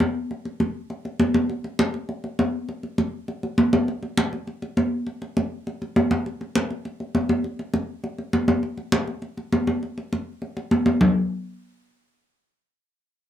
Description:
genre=jazz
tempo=202 BPM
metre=4/4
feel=straight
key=none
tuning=none
part: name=congas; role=percussion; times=0.0-11.1 s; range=none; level=-22 LUFS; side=equal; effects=none
room=moderate club reverb, RT60 0.6 s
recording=close, detailed microphones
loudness=-22 LUFS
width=side -10 dB against mid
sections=0.0-6.3 A section; 6.3-11.0 B section; 11.0-13.3 C section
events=none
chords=none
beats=0.01 | 0.31 0.60 0.90 1.20 | 1.50 1.79 2.09 2.39 | 2.69 2.98 3.28 3.58 | 3.88 4.17 4.47 4.77 | 5.07 5.36 5.66 5.96 | 6.25 6.55 6.85 7.15 | 7.44 7.74 8.04 8.33 | 8.63 8.93 9.22 9.52 | 9.82 10.12 10.41 10.71 | 11.01

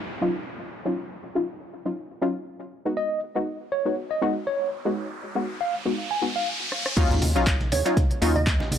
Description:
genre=deep house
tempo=120 BPM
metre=4/4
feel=swing 55% on 16ths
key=Eb minor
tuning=A4 = 440 Hz
part: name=downlifter and riser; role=sound effects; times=0.0-7.0 s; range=none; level=-34 LUFS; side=equal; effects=none
part: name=filtered dub chord stab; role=stabs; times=0.2-8.4 s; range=Gb3 to F#4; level=-27 LUFS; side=left 1 dB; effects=chorus, sidechain pumping, tape echo
part: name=tine electric piano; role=melody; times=3.0-6.5 s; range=Db5 to G#5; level=-28 LUFS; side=right 1 dB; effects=medium stereo tremolo, tape echo
part: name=deep house drum kit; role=drums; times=6.7-8.8 s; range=crash cymbal, handclaps, hi-hat, rim click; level=-30 LUFS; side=equal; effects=studio reverb
part: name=organ-like FM bass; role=bass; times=7.0-8.8 s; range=Bb1 to Eb2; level=-25 LUFS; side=equal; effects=tube saturation, sidechain pumping
part: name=dusty soul sampler-style drum kit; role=drums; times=7.0-8.8 s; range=hi-hat, snare drum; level=-37 LUFS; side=equal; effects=high-pass filter on hats, studio reverb, high-pass filter on snare, high-pass filter on room
part: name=electronic kick drum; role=drums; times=7.0-8.6 s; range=none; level=-23 LUFS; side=equal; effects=studio reverb
part: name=congas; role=percussion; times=7.1-8.8 s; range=none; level=-30 LUFS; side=right 2 dB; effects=none
part: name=glassy wavetable pluck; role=melody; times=7.7-8.8 s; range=Db5 to Eb5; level=-28 LUFS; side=right 5 dB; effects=chorus, tape echo
room=little or no reverb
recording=dry, gritty hardware recording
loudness=-23 LUFS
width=side -9 dB against mid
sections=0.0-7.0 A section; 7.0-8.8 B section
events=riser 4.4-7.0; drum fill 6.7; drop 7.0-8.8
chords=0.0 Ebm9; 2.7 B6; 7.0 Ebm9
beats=0.47 | 0.97 1.47 1.97 2.47 | 2.97 3.47 3.97 4.47 | 4.97 5.47 5.97 6.47 | 6.97 7.47 7.97 8.47

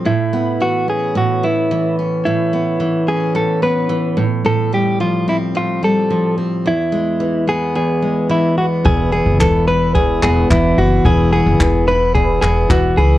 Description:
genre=acoustic pop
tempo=109 BPM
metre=4/4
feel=straight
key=unclear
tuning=A4 = 440 Hz
part: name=picked steel-string acoustic guitar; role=accompaniment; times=0.0-13.2 s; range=E2 to E4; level=-17 LUFS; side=equal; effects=none
part: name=direct-recorded clean electric guitar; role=melody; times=0.1-13.2 s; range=E4 to B4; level=-17 LUFS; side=equal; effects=none
part: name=upright bass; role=bass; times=8.9-13.2 s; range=E1 to C#2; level=-16 LUFS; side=equal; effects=none
part: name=jazz brush drum kit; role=drums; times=8.9-12.8 s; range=handclaps, kick drum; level=-18 LUFS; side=left 1 dB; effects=none
room=light reverb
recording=worn, warbling old tape, cassette tape, warbly pitch drift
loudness=-13 LUFS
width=side -14 dB against mid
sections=0.0-8.9 A section; 8.9-13.2 B section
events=none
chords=0.1 Aadd9; 4.2 Fadd9/A; 6.7 E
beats=| 0.05 0.60 1.15 1.70 | 2.25 2.80 3.35 3.90 | 4.45 5.00 5.55 6.10 | 6.65 7.20 7.75 8.30 | 8.85 9.40 9.95 10.50 | 11.05 11.60 12.15 12.70

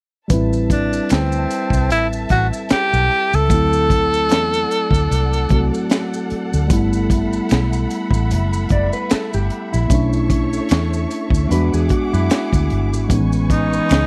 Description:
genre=R&B, neo-soul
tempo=75 BPM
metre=4/4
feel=swing 57% on 16ths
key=A dorian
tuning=A4 = 441 Hz
part: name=mellow tine electric piano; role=accompaniment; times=0.3-14.1 s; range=E3 to B4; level=-24 LUFS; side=equal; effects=none
part: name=warm studio string section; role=sustained chords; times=0.3-14.1 s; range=G#4 to D6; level=-32 LUFS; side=equal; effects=none
part: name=vintage muted fingered electric bass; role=bass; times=0.3-14.1 s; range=F#1 to F#2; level=-22 LUFS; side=equal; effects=none
part: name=crunchy breakbeat drum kit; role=drums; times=0.3-14.1 s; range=hi-hat, kick drum, snare drum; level=-21 LUFS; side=equal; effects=none
part: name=maracas and finger snaps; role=percussion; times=0.3-14.1 s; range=none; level=-36 LUFS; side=equal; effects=none
part: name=breathy tenor saxophone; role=melody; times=0.7-5.7, 13.5-14.1 s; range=C4 to A4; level=-21 LUFS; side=equal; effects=none
part: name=mellow electric guitar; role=second line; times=8.7-13.1 s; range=E4 to D5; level=-28 LUFS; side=equal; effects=none
room=little or no reverb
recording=dry, close 1970s-style studio recording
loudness=-18 LUFS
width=mono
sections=0.3-14.1 A section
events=none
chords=0.3 Am7; 3.5 D7; 6.7 Gmaj13; 9.9 Bm11; 11.5 E9; 13.1 Amaj9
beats=| 0.30 1.10 1.90 2.70 | 3.50 4.30 5.10 5.90 | 6.70 7.50 8.30 9.10 | 9.90 10.70 11.50 12.30 | 13.10 13.90

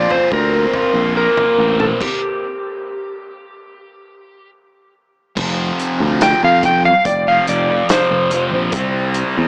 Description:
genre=psychedelic rock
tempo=71 BPM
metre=4/4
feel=straight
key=unclear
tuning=A4 = 441 Hz
part: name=clean lap steel guitar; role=melody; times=0.0-9.5 s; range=G4 to G5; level=-19 LUFS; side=equal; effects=dub echo
part: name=thick fuzz guitar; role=riff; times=0.0-9.5 s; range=F2 to F4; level=-22 LUFS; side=equal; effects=distortion, phaser, dub echo
part: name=picked electric bass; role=bass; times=0.0-9.5 s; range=F1 to F2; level=-23 LUFS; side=equal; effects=none
part: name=vintage drum kit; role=drums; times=0.1-9.3 s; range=crash cymbal, hi-hat, kick drum, snare drum, toms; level=-24 LUFS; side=equal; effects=dub echo
room=light reverb, small room ambience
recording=echo-heavy mix, small speaker sound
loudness=-16 LUFS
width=mono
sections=0.0-5.4 A section; 5.4-9.5 B section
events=stop 2.0-5.4; electric slide guitar solo 5.4-9.5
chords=0.0 Bbsus2; 2.0 N.C.; 5.4 F5; 8.7 C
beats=0.32 1.16 | 2.00 2.85 3.69 4.53 | 5.38 6.22 7.06 7.90 | 8.74

